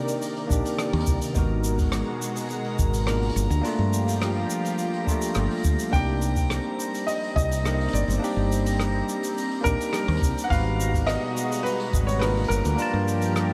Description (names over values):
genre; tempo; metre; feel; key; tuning
sunset chillout; 105 BPM; 4/4; straight; C minor; A4 = 441 Hz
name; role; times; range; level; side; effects
bell-like tine electric piano; accompaniment; 0.0-13.5 s; A3 to A5; -32 LUFS; equal; diffuse ambient delay, shimmer reverb
lush unison pad; sustained chords; 0.0-13.5 s; Cb3 to D5; -33 LUFS; equal; chorus, phaser, shimmer reverb
drifting glass-harmonics texture; texture; 0.0-13.5 s; Bb5; -39 LUFS; equal; chorus, built-in reverb, shimmer reverb
soft brush drum kit; drums; 0.1-13.5 s; hi-hat, rim click, shaker; -37 LUFS; equal; none
woody fretless electric bass; bass; 0.5-13.5 s; G1 to G2; -27 LUFS; equal; analog chorus
electronic kick drum; drums; 0.5-12.1 s; none; -28 LUFS; equal; none
warm baby grand piano; melody; 5.9-13.5 s; Bb4 to G5; -32 LUFS; equal; diffuse ambient delay, shimmer reverb
room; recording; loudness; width
wet cathedral reverb, RT60 5.2 s; dreamy mix soaked in reverb; -25 LUFS; mono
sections
0.0-13.5 A section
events
none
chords
0.0 Cm9; 1.4 Abm9; 3.4 Gm9; 5.9 Cm9; 10.5 Abm9; 12.5 Gm9